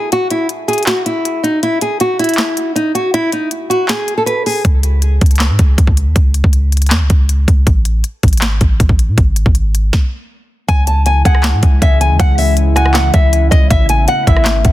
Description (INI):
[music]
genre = hip hop, trap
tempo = 159 BPM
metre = 4/4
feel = half-time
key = C# minor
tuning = A4 = 440 Hz
[part]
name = nylon-string guitar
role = melody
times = 0.0-4.6, 10.7-14.7 s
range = D#4 to A5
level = -15 LUFS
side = equal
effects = tape echo
[part]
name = trap drum kit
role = drums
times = 0.1-14.7 s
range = handclaps, hi-hat, kick drum, rim click, snare drum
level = -13 LUFS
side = equal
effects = none
[part]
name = warm 808-style bass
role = bass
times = 4.6-14.7 s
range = G#1 to A2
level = -12 LUFS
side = equal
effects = none
[part]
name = dark analog pad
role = sustained chords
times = 11.0-14.7 s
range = C#3 to E4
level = -21 LUFS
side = left 1 dB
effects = chorus
[part]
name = soft octave-layered synth lead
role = second line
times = 11.3-14.4 s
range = E5 to G#5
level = -24 LUFS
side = right 3 dB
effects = chorus, tape echo
[sound]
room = little or no reverb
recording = dense, heavily limited modern master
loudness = -10 LUFS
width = side -15 dB against mid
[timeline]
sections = 0.0-10.7 A section; 10.7-14.7 B section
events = break 0.0-4.6; stop 9.9-10.7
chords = 0.0 N.C.; 10.7 C#m; 13.7 Aadd9